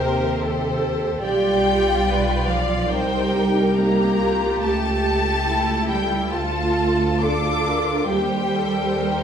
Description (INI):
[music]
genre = classical, slow romantic movement for string orchestra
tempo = 70 BPM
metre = 4/4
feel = rubato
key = unclear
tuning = A4 = 441 Hz
[part]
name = rich symphonic violin section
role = melody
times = 0.0-9.2 s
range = C5 to D6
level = -25 LUFS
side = left 3 dB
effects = none
[part]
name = warm symphonic violin section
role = second line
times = 0.0-9.2 s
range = Eb4 to D5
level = -25 LUFS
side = left 2 dB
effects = none
[part]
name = rich studio viola section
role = accompaniment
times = 0.0-9.2 s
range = E4 to D5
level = -24 LUFS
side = right 2 dB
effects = none
[part]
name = rich symphonic cello section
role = bass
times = 0.0-9.2 s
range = C3 to D4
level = -26 LUFS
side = right 2 dB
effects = none
[part]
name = rich symphonic double bass section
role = bass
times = 0.0-9.2 s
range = B1 to Eb2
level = -25 LUFS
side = right 2 dB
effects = none
[sound]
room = wet recital hall reverb, RT60 1.4 s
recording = heard from further back in the room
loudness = -18 LUFS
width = side -8 dB against mid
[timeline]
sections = 0.0-9.2 A section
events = none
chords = 0.0 Eb; 1.2 G7/B; 2.9 Cm7; 4.6 A7/C#; 6.3 Dm; 8.1 Cm/Eb